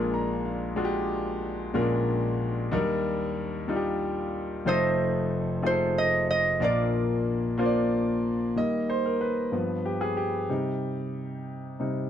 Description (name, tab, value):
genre	gospel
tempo	62 BPM (dotted quarters)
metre	6/8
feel	straight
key	Eb major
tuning	A4 = 443 Hz
part	concert harp	melody	0.0-1.1, 4.7-9.2 s	Eb4 to F5	-27 LUFS	right 1 dB	none
part	clear concert grand piano	accompaniment	0.0-12.1 s	F1 to Bb5	-26 LUFS	left 1 dB	none
room	moderate studio ambience, RT60 0.5 s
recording	dark, warm production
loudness	-25 LUFS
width	side -9 dB against mid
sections	0.0-8.6 A section; 8.6-12.1 B section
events	grand piano fill 0.0-0.8; grand piano solo 8.6-12.1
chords	0.0 Bb7; 2.7 Ebmaj7; 4.7 F7; 6.6 Bb; 8.6 Eb; 9.5 G7; 10.5 Cm